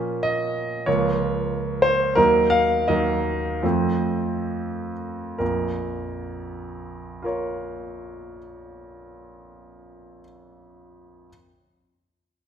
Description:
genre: classical, romantic character piece for solo piano.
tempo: 62-95 BPM.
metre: 4/4.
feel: rubato.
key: Bb minor.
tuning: A4 = 443 Hz.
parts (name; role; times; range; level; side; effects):
clear concert grand piano; solo; 0.0-11.3 s; Bb1 to F5; -21 LUFS; right 1 dB; none.
room: wet recital hall reverb, RT60 1.6 s.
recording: minimal, uncompressed stereo recording.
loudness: -21 LUFS.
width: side -8 dB against mid.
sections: 0.0-5.4 A section; 5.4-9.0 B section.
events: slowing down 0.0-5.4.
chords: 0.0 Bbm; 0.9 Bbm/Db; 2.2 Ebm; 3.6 F7; 5.4 Bbm.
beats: 0.23 0.87 1.50 | 2.17 2.88 3.63 4.46 | 5.39 6.31 7.22 8.12.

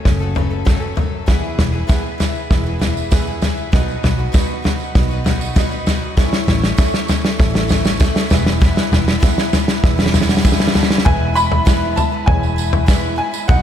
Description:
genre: indie folk with a building arrangement.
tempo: 98 BPM.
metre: 4/4.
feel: straight.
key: E major.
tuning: A4 = 440 Hz.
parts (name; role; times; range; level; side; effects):
fingerpicked steel-string acoustic guitar; accompaniment; 0.0-3.4 s; F#2 to B4; -31 LUFS; left 4 dB; slapback echo.
picked twelve-string acoustic guitar; accompaniment; 0.0-13.6 s; E2 to A4; -26 LUFS; left 4 dB; slapback echo.
picked electric bass; bass; 0.1-13.6 s; E1 to B1; -21 LUFS; equal; none.
loose indie drum kit; drums; 0.1-13.6 s; kick drum, snare drum, toms; -15 LUFS; equal; none.
warm baby grand piano; accompaniment; 1.3-13.6 s; A1 to A5; -28 LUFS; right 9 dB; slapback echo.
mellow tonewheel organ; sustained chords; 1.3-13.6 s; G#3 to C#6; -30 LUFS; right 3 dB; slow rotary speaker.
tambourine; percussion; 1.3-13.6 s; none; -33 LUFS; right 12 dB; none.
clear upright piano; melody; 11.1-13.6 s; F#5 to B5; -20 LUFS; equal; slapback echo, digital delay.
room: light reverb, studio ambience.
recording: none.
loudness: -14 LUFS.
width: side -10 dB against mid.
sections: 0.0-11.1 A section; 11.1-13.6 B section.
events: build-up 0.0-11.1; drum fill 0.0-11.1; grand piano fill 9.8-11.1.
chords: 0.0 F#m; 1.3 E; 3.7 B; 6.2 A; 8.3 E.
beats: 0.06 0.67 | 1.28 1.89 2.50 3.12 | 3.73 4.34 4.95 5.56 | 6.17 6.79 7.39 8.01 | 8.62 9.22 9.84 10.44 | 11.05 11.66 12.27 12.88 | 13.49.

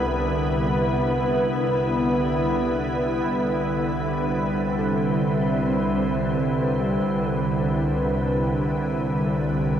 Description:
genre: ambient.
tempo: free time.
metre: none.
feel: none.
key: C major.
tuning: A4 = 440 Hz.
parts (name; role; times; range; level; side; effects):
soft additive organ-like pad; sustained chords; 0.0-9.8 s; D3 to B4; -22 LUFS; equal; ensemble chorus, built-in reverb.
clear studio double bass section; bass; 0.0-9.8 s; C2; -29 LUFS; equal; none.
soft synth bell; arpeggios; 4.1-9.8 s; C4 to B4; -37 LUFS; equal; none.
room: wet lush hall reverb, RT60 2.5 s.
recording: home recording on cassette.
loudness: -21 LUFS.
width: side -9 dB against mid.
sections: 0.0-3.3 A section; 3.3-9.8 B section.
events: none.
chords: 0.0 Em7/C; 3.3 Cmaj9.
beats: free time.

